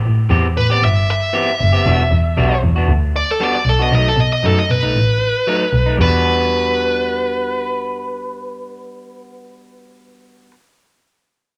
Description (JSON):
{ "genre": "straight-eighth soul blues", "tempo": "116 BPM", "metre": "4/4", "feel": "straight", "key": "E minor", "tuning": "A4 = 440 Hz", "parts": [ { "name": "dark double bass", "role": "bass", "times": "0.1-10.5 s", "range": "E1 to B2", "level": "-18 LUFS", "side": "equal", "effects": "none" }, { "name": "electric guitar through a small old amp", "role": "stabs", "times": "0.3-10.6 s", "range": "E3 to G4", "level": "-24 LUFS", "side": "equal", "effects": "none" }, { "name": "dark smooth lead guitar", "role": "melody", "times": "0.6-10.5 s", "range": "A4 to E5", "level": "-21 LUFS", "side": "equal", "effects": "overdrive, slapback echo" } ], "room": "light reverb, studio reverb", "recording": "none", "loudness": "-16 LUFS", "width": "mono", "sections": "0.0-6.0 A section; 6.0-10.1 B section", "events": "none", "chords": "0.0 Am9; 1.9 Em9; 3.9 B7; 6.0 Em9" }